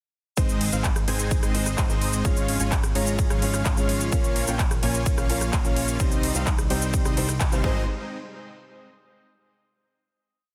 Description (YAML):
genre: EDM, festival progressive house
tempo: 128 BPM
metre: 4/4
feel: straight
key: Ab major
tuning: A4 = 438 Hz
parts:
  - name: clear baby grand piano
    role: accompaniment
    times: 0.4-7.8 s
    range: G3 to F5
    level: -34 LUFS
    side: equal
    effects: sidechain pumping, digital delay
  - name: lush unison pad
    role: sustained chords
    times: 0.4-7.9 s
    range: C3 to C5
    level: -40 LUFS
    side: equal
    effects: none
  - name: dense compressed supersaw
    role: riff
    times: 0.4-7.8 s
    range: G3 to Bb5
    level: -32 LUFS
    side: equal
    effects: sidechain pumping, digital delay
  - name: fat analog bass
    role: bass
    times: 0.4-7.9 s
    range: Ab1 to C2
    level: -31 LUFS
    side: equal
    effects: sidechain pumping
  - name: big-room dance drum kit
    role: drums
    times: 0.4-7.6 s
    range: cabasa, handclaps, hi-hat, ride cymbal, rim click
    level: -32 LUFS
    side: equal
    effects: overdrive
  - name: electronic kick drum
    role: drums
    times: 0.4-7.7 s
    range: none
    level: -26 LUFS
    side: equal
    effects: overdrive
room: little or no reverb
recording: dense, heavily limited modern master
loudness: -24 LUFS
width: mono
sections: 0.4-7.9 drop; 7.9-9.7 final hit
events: drop 0.4-7.9; band accent 7.4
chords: 0.4 Ab; 2.2 Db/Ab; 4.1 Bbm; 6.0 Cm; 7.6 Ab; 7.9 N.C.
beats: | 0.37 0.84 1.31 1.78 | 2.25 2.72 3.19 3.65 | 4.12 4.59 5.06 5.53 | 6.00 6.47 6.94 7.41